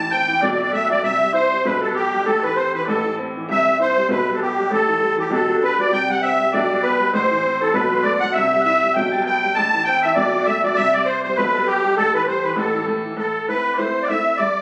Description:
celtic folk, Celtic reel; 198 BPM; 4/4; swing 57% on 8ths; A dorian; A4 = 440 Hz
musette accordion; melody; 0.0-14.6 s; G4 to A5; -20 LUFS; equal
Celtic harp; second line; 0.0-14.6 s; G4 to A5; -27 LUFS; equal; slapback echo
mellow small bagpipes; second line; 0.0-3.2, 8.3-14.6 s; G4 to A5; -32 LUFS; equal
bright upright piano; accompaniment; 0.0-14.6 s; A1 to E4; -27 LUFS; equal
moderate studio reverb, RT60 0.5 s; recorded on a phone in the room, club reverb, compression; -19 LUFS; mono
0.0-3.5 A section; 3.5-13.2 A section; 13.2-14.6 B section
0.4 B5; 1.0 C; 1.6 G/B; 2.3 Am; 3.5 C; 4.1 G/B; 4.7 A5; 5.3 Bm7; 5.9 C; 6.5 G/B; 7.1 Am; 7.7 Bm7; 8.3 C; 9.0 G/B; 9.6 Am; 10.2 Bm7; 10.8 C; 11.4 G/B; 12.0 A5; 13.2 Am

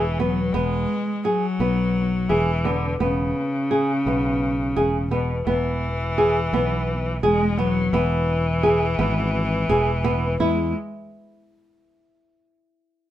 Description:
contemporary instrumental, chamber music in an uneven meter; 170 BPM (eighths); 7/8; straight; E major; A4 = 439 Hz
clear cello; second line; 0.0-10.7 s; B2 to G#3; -24 LUFS; left 2 dB
flamenco guitar; arpeggios; 0.0-10.7 s; B3 to G#4; -23 LUFS; right 1 dB
sustaining fretless electric bass; bass; 0.0-10.7 s; E1 to E2; -25 LUFS; right 1 dB
light reverb; -19 LUFS; side -12 dB against mid
0.0-5.5 A section; 5.5-10.4 B section; 10.4-12.9 C section
0.0 E; 10.4 N.C.

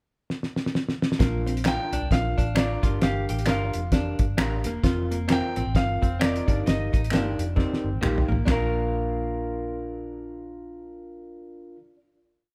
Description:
uptempo 1960s-style soul; 132 BPM; 4/4; swing 60% on 8ths; Bb major; A4 = 439 Hz
cloth-damped thuddy drum kit; drums; 0.3-8.6 s; hi-hat, kick drum, snare drum, toms; -27 LUFS; equal
overdriven tine electric piano; accompaniment; 1.2-11.8 s; C4 to G5; -35 LUFS; equal
hollow-body jazz guitar; riff; 1.2-9.8 s; Bb3 to G4; -37 LUFS; equal
vintage muted fingered electric bass; bass; 1.2-11.8 s; E1 to C2; -31 LUFS; equal
electric guitar through a small old amp; stabs; 1.6-12.0 s; Bb3 to Bb4; -36 LUFS; equal; spring reverb
finger snaps; percussion; 1.6-8.7 s; -35 LUFS; equal
bright concert grand piano; melody; 1.7-11.8 s; Bb4 to G5; -35 LUFS; equal
moderate large studio reverb, RT60 1.3 s; band playing live in one room; -25 LUFS; mono
0.0-1.2 pickup bar; 1.2-8.5 verse; 8.5-12.1 final chord
drum fill 0.3-1.2, 7.6-8.5
0.0 N.C.; 1.2 Bb; 2.8 Gm7; 4.8 Fsus4; 6.4 Ebadd9; 8.5 Bb

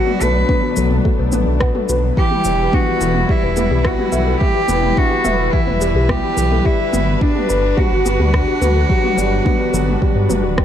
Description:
piano and strings electronica; 107 BPM; 4/4; straight; G major; A4 = 441 Hz
rich cello; melody; 0.0-10.6 s; D4 to B4; -20 LUFS; right 1 dB
muted studio string section; sustained chords; 0.0-10.6 s; E3 to B4; -26 LUFS; left 1 dB; sidechain pumping
felt-muted upright piano; riff; 0.0-10.6 s; E3 to E5; -20 LUFS; left 2 dB
warbly dusty pluck; arpeggios; 0.1-10.6 s; F#3 to G5; -26 LUFS; left 1 dB; chorus, sidechain pumping, tape echo
organic electronic drum kit; drums; 0.1-10.6 s; rim click, shaker, toms; -25 LUFS; right 1 dB
dark detuned saw bass; bass; 0.2-10.6 s; D1 to G2; -18 LUFS; equal; sidechain pumping
electronic kick drum; drums; 0.5-10.6 s; -18 LUFS; equal
light reverb; dark, warm production; -14 LUFS; side -10 dB against mid
0.0-10.6 A section
0.0 Bm7; 2.2 Em; 6.7 Gmaj7

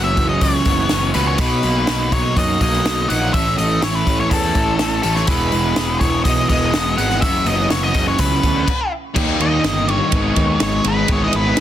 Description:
indie rock; 124 BPM; 4/4; straight; A4 = 440 Hz
octave-fuzz lead guitar; melody; 0.0-11.6 s; A4 to F#5; -21 LUFS; left 1 dB; distortion
fuzz guitar; riff; 0.0-11.6 s; E2 to G#4; -23 LUFS; left 7 dB; distortion
overdriven electric guitar; riff; 0.0-11.6 s; E2 to A4; -22 LUFS; right 7 dB; analog chorus
fuzz picked electric bass; bass; 0.0-11.6 s; E1 to F#2; -21 LUFS; equal; overdrive
compact cocktail drum kit; drums; 0.2-11.6 s; crash cymbal, hi-hat, kick drum, ride cymbal, snare drum; -21 LUFS; equal
light reverb; dense, heavily limited modern master; -15 LUFS; side -11 dB against mid
0.0-9.2 A section; 9.2-11.6 B section
stop 8.7-9.2; lead electric guitar solo 9.2-11.6
0.0 F#7sus4; 1.4 Bmaj7; 3.3 A; 5.3 Emaj7; 7.2 F#7sus4; 9.2 D#; 10.1 G#m; 11.1 E/G#

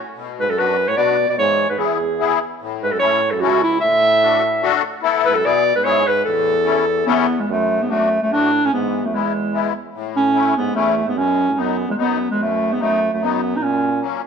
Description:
alpine folk, alpine dance band; 147 BPM; 3/4; swing 54% on 8ths; A major; A4 = 440 Hz
musette accordion; accompaniment; 0.2-14.2 s; F#2 to A4; -22 LUFS; left 10 dB
mellow clarinet; melody; 0.4-14.0 s; G#3 to E5; -17 LUFS; equal
warm euphonium; second line; 0.4-14.0 s; C#2 to B2; -25 LUFS; right 10 dB; tape echo
moderate echo chamber reverb, RT60 1.4 s, small room reverb; 1960s-style stereo with parts hard left and right; -15 LUFS; side -6 dB against mid
0.0-7.5 A section; 7.5-14.3 B section
0.2 Bm; 1.4 E; 2.6 A; 3.8 Dadd9; 5.0 Esus4; 5.4 E; 6.2 A; 7.5 D; 8.7 E; 9.9 A; 11.2 B; 13.6 F#

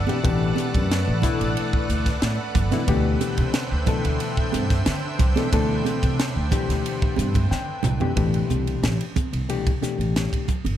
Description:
electric jazz fusion; 91 BPM; 4/4; straight; A minor; A4 = 441 Hz
soft additive organ-like pad; sustained chords; 0.0-8.1 s; D3 to G5; -30 LUFS; equal; ensemble chorus, built-in reverb
upright bass; bass; 0.0-10.8 s; G1 to D3; -25 LUFS; equal
overdriven reed electric piano; accompaniment; 0.1-10.5 s; B2 to G5; -27 LUFS; left 5 dB
crisp fusion drum kit; drums; 0.1-10.8 s; hi-hat, kick drum, ride cymbal, snare drum, toms; -25 LUFS; equal
congas; percussion; 0.1-10.8 s; -30 LUFS; right 8 dB
light reverb; -20 LUFS; side -11 dB against mid
0.0-8.2 A section; 8.2-10.8 B section
reed electric piano fill 7.2-8.2; drum fill 7.5-8.2
0.0 A13sus4; 2.9 D13sus4; 8.2 Am9

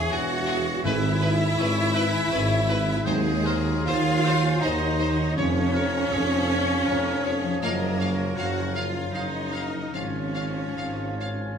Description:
classical; 79 BPM; 3/4; uneven beats, rubato; Db major from 3.1 s; A4 = 444 Hz
silver concert flute; second line; 0.0-11.6 s; C5 to G#5; -36 LUFS; left 5 dB
warm oboe; second line; 0.0-11.6 s; F4 to Eb5; -35 LUFS; right 2 dB
warm studio violin section; second line; 0.0-11.6 s; Ab4 to G#5; -35 LUFS; left 1 dB
dark studio viola section; accompaniment; 0.0-11.6 s; Ab3 to G#4; -33 LUFS; left 1 dB
warm bassoon; accompaniment; 0.0-11.6 s; E3 to Gb3; -36 LUFS; right 2 dB
concert harp; arpeggios; 0.0-11.6 s; F2 to B5; -35 LUFS; left 6 dB
rich studio cello section; bass; 0.0-11.6 s; Ab3 to G#4; -29 LUFS; equal
warm studio double bass section; bass; 0.0-11.5 s; G#1 to Gb2; -28 LUFS; right 1 dB
warm tuba; bass; 0.0-11.5 s; E1 to Eb2; -30 LUFS; right 2 dB
warm studio violin section; melody; 0.1-11.3 s; G#4 to F5; -34 LUFS; left 1 dB
warm clarinet; second line; 0.1-11.6 s; Ab4 to Gb5; -35 LUFS; left 1 dB
mellow French horn section; sustained chords; 0.8-10.2 s; F3 to E4; -35 LUFS; left 1 dB
timpani; percussion; 0.8-1.9 s; G#2; -32 LUFS; left 2 dB
wet stone room reverb, RT60 1.0 s; -22 LUFS; side -7 dB against mid
0.0-11.6 A section
0.0 E; 0.8 E/G#; 3.1 Ab7/Eb; 5.4 Db/F; 7.6 Gbmaj7; 9.9 Db/Ab

